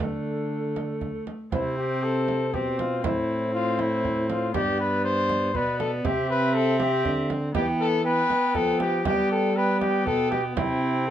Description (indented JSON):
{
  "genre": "classical, renaissance-style consort dance",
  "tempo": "119 BPM",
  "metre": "3/4",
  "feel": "straight",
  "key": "unclear",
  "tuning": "A4 = 439 Hz",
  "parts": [
    { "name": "mellow cornet", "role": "melody", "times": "0.0-11.1 s", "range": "D4 to C5", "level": "-26 LUFS", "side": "left 3 dB", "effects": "none" },
    { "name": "mellow hollow tenor recorder", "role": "second line", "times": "0.0-11.1 s", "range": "A4 to G5", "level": "-30 LUFS", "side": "right 3 dB", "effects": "none" },
    { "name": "warm viola", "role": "accompaniment", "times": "0.0-11.1 s", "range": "A3 to C4", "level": "-31 LUFS", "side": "left 1 dB", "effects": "none" },
    { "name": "dark trombone", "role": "bass", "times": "0.0-11.1 s", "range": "G2 to G3", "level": "-28 LUFS", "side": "right 1 dB", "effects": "none" },
    { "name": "frame drum", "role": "percussion", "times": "0.0-10.8 s", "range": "none", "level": "-32 LUFS", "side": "right 5 dB", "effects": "none" }
  ],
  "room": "light reverb",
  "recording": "dark, warm production",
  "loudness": "-22 LUFS",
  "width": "side -10 dB against mid",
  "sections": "0.0-1.5 A section; 1.5-11.1 A section",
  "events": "none",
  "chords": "0.0 D5; 1.5 Fadd9(#11) (rootless); 3.0 Am; 4.5 G; 6.0 C; 7.6 Em; 9.1 G; 10.6 C",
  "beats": "| 0.00 0.51 1.02 | 1.53 2.03 2.54 | 3.04 3.54 4.04 | 4.55 5.05 5.55 | 6.05 6.55 7.05 | 7.55 8.05 8.55 | 9.06 9.56 10.07 | 10.57 11.07"
}